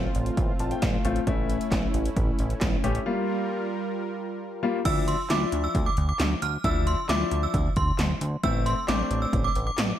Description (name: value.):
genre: synth-pop.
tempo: 134 BPM.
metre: 4/4.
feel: straight.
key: D minor.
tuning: A4 = 440 Hz.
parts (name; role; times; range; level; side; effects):
clear baby grand piano; accompaniment; 0.0-9.5 s; F3 to A5; -29 LUFS; left 4 dB; none.
brassy analog pad; sustained chords; 0.0-4.8 s; G3 to Bb4; -31 LUFS; right 1 dB; chorus.
chorused synth bass; bass; 0.0-9.9 s; A1 to D2; -28 LUFS; equal; none.
80s electronic pad drums; drums; 0.1-9.9 s; crash cymbal, handclaps, hi-hat, kick drum, snare drum; -27 LUFS; equal; none.
synth chime; second line; 4.9-9.8 s; C6 to F6; -30 LUFS; right 3 dB; ensemble chorus, digital delay.
room: light reverb.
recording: dark, warm production.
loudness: -23 LUFS.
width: side -11 dB against mid.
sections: 0.0-4.9 A section; 4.9-10.0 B section.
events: grand piano fill 0.4-1.3; break 3.1-4.9.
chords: 0.0 F/A; 1.3 A; 3.1 Gm7; 4.9 Dmadd9; 8.4 Am.